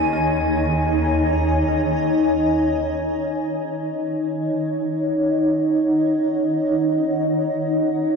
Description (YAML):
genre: ambient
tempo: free time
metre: none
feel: none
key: Eb minor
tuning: A4 = 441 Hz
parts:
  - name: granular cloud pad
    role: sustained chords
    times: 0.0-8.2 s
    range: Eb4 to Ab5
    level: -19 LUFS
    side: equal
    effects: built-in reverb
  - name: rich symphonic cello section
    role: bass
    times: 0.0-2.9 s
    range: Eb2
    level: -25 LUFS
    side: equal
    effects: none
room: wet huge ambient reverb, RT60 8.3 s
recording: dark, warm production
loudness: -18 LUFS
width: side -5 dB against mid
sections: 0.0-3.0 A section; 3.0-8.2 B section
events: filter sweep on ambient pad 3.0-8.2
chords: 0.0 Eb7(no3); 3.0 Ebm7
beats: free time